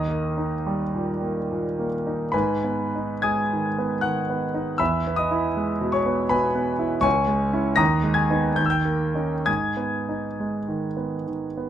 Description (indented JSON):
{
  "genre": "classical, romantic nocturne for solo piano",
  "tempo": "63-82 BPM",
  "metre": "3/4",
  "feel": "rubato",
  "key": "G# minor",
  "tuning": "A4 = 441 Hz",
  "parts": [
    { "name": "clear concert grand piano", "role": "solo", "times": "0.0-11.7 s", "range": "C#2 to A#6", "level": "-22 LUFS", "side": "equal", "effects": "none" }
  ],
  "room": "little or no reverb",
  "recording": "close, detailed microphones",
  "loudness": "-21 LUFS",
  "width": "side -10 dB against mid",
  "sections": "0.0-11.7 A section",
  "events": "none",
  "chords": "0.0 D#; 2.3 G#m; 4.8 E; 7.1 C#m; 7.8 G#m/D#; 8.6 D#7; 9.5 G#m"
}